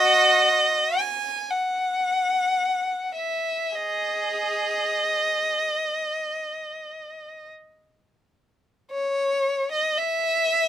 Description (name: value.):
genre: classical, free, expressive piece for unaccompanied violin.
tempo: free time.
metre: none.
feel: none.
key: unclear.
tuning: A4 = 439 Hz.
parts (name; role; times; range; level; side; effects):
rich violin; solo; 0.0-10.7 s; F#4 to G#5; -21 LUFS; equal; none.
room: light reverb.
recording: close, detailed microphones.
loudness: -21 LUFS.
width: side -10 dB against mid.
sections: 0.0-8.9 A section; 8.9-10.7 B section.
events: none.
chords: none.